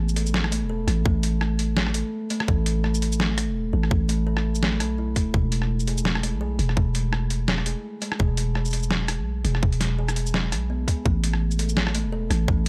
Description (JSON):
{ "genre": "half-time drum and bass", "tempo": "168 BPM", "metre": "4/4", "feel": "swing 56% on 16ths, half-time", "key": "unclear", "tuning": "A4 = 437 Hz", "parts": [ { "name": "kalimba", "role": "arpeggios", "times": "0.0-12.7 s", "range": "G#3 to A4", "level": "-32 LUFS", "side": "equal", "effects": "analog delay" }, { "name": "growling 808-style bass", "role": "bass", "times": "0.0-12.7 s", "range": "E1 to B1", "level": "-26 LUFS", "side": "equal", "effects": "none" }, { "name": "boom bap sampler-style drum kit", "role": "drums", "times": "0.1-12.7 s", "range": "hi-hat, rim click, shaker, snare drum", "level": "-29 LUFS", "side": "equal", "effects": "studio reverb" }, { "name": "electronic kick drum", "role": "drums", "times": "1.1-12.6 s", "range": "none", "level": "-25 LUFS", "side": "equal", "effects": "overdrive, studio reverb" } ], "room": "little or no reverb", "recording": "dry, gritty hardware recording", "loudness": "-24 LUFS", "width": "mono", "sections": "0.0-12.7 A section", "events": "none", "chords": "0.0 A5; 5.3 E; 11.1 A5", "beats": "0.34 0.70 | 1.05 1.41 1.77 2.13 | 2.48 2.84 3.20 3.56 | 3.91 4.27 4.63 4.98 | 5.34 5.70 6.05 6.41 | 6.77 7.13 7.48 7.84 | 8.20 8.55 8.91 9.27 | 9.63 9.98 10.34 10.70 | 11.05 11.41 11.77 12.13 | 12.48" }